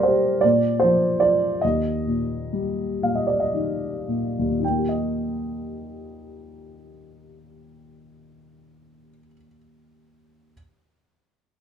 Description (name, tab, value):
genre	classical, lyrical solo piano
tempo	34-53 BPM (dotted quarters)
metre	6/8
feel	rubato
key	Eb major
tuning	A4 = 440 Hz
part	dark grand piano	solo	0.0-10.5 s	Eb2 to G5	-20 LUFS	equal	none
room	light reverb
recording	none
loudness	-20 LUFS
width	side -8 dB against mid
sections	0.0-4.6 A section; 4.6-8.0 B section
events	slowing down 0.0-4.6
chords	0.4 Bb5; 1.6 Eb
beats	0.43 | 1.63 3.01 | 4.63 6.31